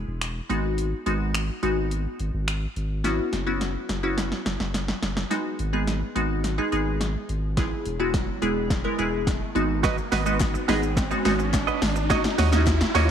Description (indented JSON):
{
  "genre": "dance-pop",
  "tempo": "106 BPM",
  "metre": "4/4",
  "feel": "straight",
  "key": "G# minor",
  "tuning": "A4 = 440 Hz",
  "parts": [
    { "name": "glassy wavetable pluck", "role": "accompaniment", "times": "0.0-13.1 s", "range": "G#3 to A#4", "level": "-26 LUFS", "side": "equal", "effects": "chorus, sidechain pumping" },
    { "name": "saturated sub bass", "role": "bass", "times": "0.0-13.1 s", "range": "E1 to D#2", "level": "-27 LUFS", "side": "equal", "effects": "sidechain pumping" },
    { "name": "deep house drum kit", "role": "drums", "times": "0.2-13.1 s", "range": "finger snaps, hi-hat, kick drum, shaker, snare drum", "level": "-27 LUFS", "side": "equal", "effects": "overdrive" },
    { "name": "riser", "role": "sound effects", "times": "7.2-13.1 s", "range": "none", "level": "-33 LUFS", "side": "right 1 dB", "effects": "none" },
    { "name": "direct-recorded clean electric guitar", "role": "riff", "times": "9.8-13.1 s", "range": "F#4 to D#5", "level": "-27 LUFS", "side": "right 12 dB", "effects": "analog chorus" },
    { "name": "group handclap", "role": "percussion", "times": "10.4-12.8 s", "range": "none", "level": "-40 LUFS", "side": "left 13 dB", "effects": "none" }
  ],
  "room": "light reverb, digital ambience",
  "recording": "1960s-style stereo with parts hard left and right",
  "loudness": "-22 LUFS",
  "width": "side -8 dB against mid",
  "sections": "0.0-5.3 A section; 5.3-13.1 B section",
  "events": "drum fill 3.0-5.3, 5.3-13.1; build-up 5.3-13.1; riser 7.2-13.1",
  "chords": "0.5 G#m7; 3.0 F#7sus4; 5.3 G#m7; 7.6 E; 9.6 G#m7; 12.1 D#m7"
}